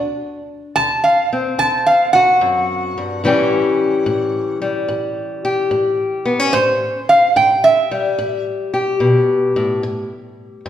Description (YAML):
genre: acoustic country blues, solo or duo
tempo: 73 BPM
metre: 4/4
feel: swing 67% on 8ths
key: unclear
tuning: A4 = 437 Hz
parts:
  - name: fingerpicked steel-string acoustic guitar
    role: accompaniment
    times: 0.0-10.7 s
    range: D2 to G4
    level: -18 LUFS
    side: left 2 dB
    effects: none
  - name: lap resonator guitar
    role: melody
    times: 0.8-8.4 s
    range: C5 to A5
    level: -13 LUFS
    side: right 1 dB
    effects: none
room: wet recital hall reverb, RT60 1.7 s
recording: recorded in a church or concert hall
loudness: -14 LUFS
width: side -10 dB against mid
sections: 0.0-10.7 A section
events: none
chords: 0.0 D7; 3.2 A7; 9.8 N.C.